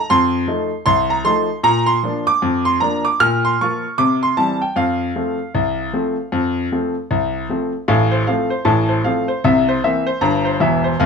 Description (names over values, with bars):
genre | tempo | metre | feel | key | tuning
ragtime piano | 77 BPM | 2/4 | swing 60% on 16ths | F major | A4 = 440 Hz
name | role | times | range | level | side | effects
clear grand piano | solo | 0.0-11.1 s | E1 to F6 | -15 LUFS | equal | none
room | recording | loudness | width
moderate studio reverb, RT60 0.5 s | none | -15 LUFS | side -5 dB against mid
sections
0.0-7.9 A section; 7.9-11.1 B section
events
none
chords
0.0 F7; 1.7 Bb; 3.2 Bbm; 4.0 C; 4.8 F; 7.9 F/A; 9.4 C7